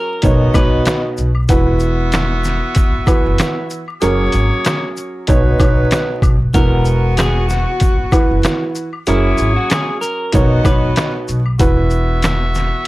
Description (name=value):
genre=hip hop, boom-bap hip-hop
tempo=95 BPM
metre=4/4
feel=swing 57% on 16ths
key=unclear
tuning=A4 = 438 Hz
part: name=electric guitar at the edge of break-up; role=melody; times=0.0-1.0, 6.5-11.1 s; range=E4 to B4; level=-22 LUFS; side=equal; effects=high-pass filter, low-pass filter, analog delay
part: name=dark upright piano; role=accompaniment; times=0.0-12.9 s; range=B2 to C#5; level=-19 LUFS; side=right 2 dB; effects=cassette tape, high-pass filter, low-pass filter
part: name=clear saxophone section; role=stabs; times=0.2-12.9 s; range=F#3 to E5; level=-22 LUFS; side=left 1 dB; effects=high-pass filter, low-pass filter, analog delay
part: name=upright bass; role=bass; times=0.2-12.7 s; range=E1 to B1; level=-16 LUFS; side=equal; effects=transformer saturation
part: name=trip hop sampler-style drum kit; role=drums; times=0.2-12.9 s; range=hi-hat, kick drum, shaker, snare drum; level=-16 LUFS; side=equal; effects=none
part: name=egg shaker and woodblock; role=percussion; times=0.2-12.7 s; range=none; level=-31 LUFS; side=left 4 dB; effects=none
room=little or no reverb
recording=dry, gritty hardware recording, vinyl crackle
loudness=-12 LUFS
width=side -18 dB against mid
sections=0.0-12.9 A section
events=none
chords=0.2 Badd9; 1.5 Esus2; 4.0 F#add9; 5.3 Badd9; 6.5 Esus2; 9.1 F#add9; 10.3 Badd9; 11.6 Esus2